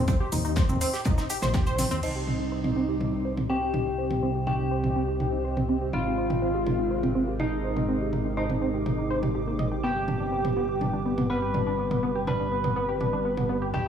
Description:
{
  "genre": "melodic techno",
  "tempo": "123 BPM",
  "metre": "4/4",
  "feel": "straight",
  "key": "C minor",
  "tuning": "A4 = 440 Hz",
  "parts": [
    { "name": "tight sequenced synth", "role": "arpeggios", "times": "0.0-13.8 s", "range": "Bb3 to Eb5", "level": "-31 LUFS", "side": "right 1 dB", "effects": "chorus, sidechain pumping, tape echo" },
    { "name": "swelling detuned saw bass", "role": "bass", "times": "0.0-13.9 s", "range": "Eb1 to Eb2", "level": "-31 LUFS", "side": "equal", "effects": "sidechain pumping" },
    { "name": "damped 70s drum kit", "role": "drums", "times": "0.1-1.9 s", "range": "hi-hat, snare drum", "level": "-40 LUFS", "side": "left 2 dB", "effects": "sidechain pumping on hats, high-pass filter on hats, high-pass filter on snare, high-pass filter on room" },
    { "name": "electronic kick drum", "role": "drums", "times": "0.1-1.6 s", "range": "none", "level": "-25 LUFS", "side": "equal", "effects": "none" },
    { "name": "techno drum kit", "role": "drums", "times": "0.1-13.8 s", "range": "crash cymbal, hi-hat, shaker, toms", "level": "-32 LUFS", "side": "right 1 dB", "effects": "sidechain pumping on perc, sidechain pumping on toms, sidechain pumping on hats, sidechain pumping on cymbals" },
    { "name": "resonant sweep polysynth", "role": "melody", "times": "2.0-13.9 s", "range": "Eb4 to B4", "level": "-30 LUFS", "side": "left 1 dB", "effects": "chorus, cassette tape, sidechain pumping, dub echo" },
    { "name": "dark detuned synth bell", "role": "second line", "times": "2.0-13.9 s", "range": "Eb5 to B5", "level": "-36 LUFS", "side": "left 1 dB", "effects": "chorus, vintage 12-bit sampler grit, sidechain pumping, tape echo" },
    { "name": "dark analog pad", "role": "sustained chords", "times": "2.7-13.9 s", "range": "G3 to D6", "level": "-36 LUFS", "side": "right 1 dB", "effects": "chorus, sidechain pumping" },
    { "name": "analog drone", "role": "drone", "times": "3.2-13.9 s", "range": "C3", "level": "-39 LUFS", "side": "right 1 dB", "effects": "none" }
  ],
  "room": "light reverb",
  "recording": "studio ambience",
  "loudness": "-24 LUFS",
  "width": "side -8 dB against mid",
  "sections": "0.0-2.0 A section; 2.0-13.9 B section",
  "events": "filter sweep on synth arpeggio sound 0.0-2.0",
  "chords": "0.0 Eb; 2.0 Cmadd9; 5.9 Absus2; 9.8 G"
}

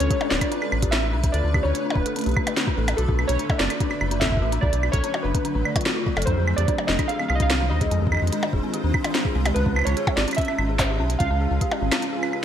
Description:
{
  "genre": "IDM",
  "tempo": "146 BPM",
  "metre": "4/4",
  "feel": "straight",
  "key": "unclear",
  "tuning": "A4 = 439 Hz",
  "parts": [
    { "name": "warbly lo-fi synth keys", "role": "melody", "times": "0.0-12.4 s", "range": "A4 to F5", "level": "-28 LUFS", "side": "right 1 dB", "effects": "chorus, vintage 12-bit sampler grit, digital delay" },
    { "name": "granular cloud pad", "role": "sustained chords", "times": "0.0-12.4 s", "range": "D3 to C5", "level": "-30 LUFS", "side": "right 1 dB", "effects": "built-in reverb, analog chorus, sidechain pumping" },
    { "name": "dark detuned synth bell", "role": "arpeggios", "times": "0.0-12.4 s", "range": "C4 to D5", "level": "-30 LUFS", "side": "left 4 dB", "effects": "chorus, digital delay" },
    { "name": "round analog bass", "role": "bass", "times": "0.0-11.9 s", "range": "D1 to F2", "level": "-23 LUFS", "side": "equal", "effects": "tube saturation" },
    { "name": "glitchy drum kit", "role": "drums", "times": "0.0-12.4 s", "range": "claves, hi-hat, percussion blips, snare drum", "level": "-26 LUFS", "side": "equal", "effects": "overdrive, gated reverb" },
    { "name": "electronic kick drum", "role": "drums", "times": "0.1-11.7 s", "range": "none", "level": "-25 LUFS", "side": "equal", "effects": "overdrive" }
  ],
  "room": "light reverb",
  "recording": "bright 1980s-style digital production",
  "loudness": "-20 LUFS",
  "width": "side -9 dB against mid",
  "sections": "0.0-12.4 A section",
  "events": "break 12.0-12.4",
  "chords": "0.0 Dm6; 3.0 Bm7; 6.3 Fm7; 9.6 C#7"
}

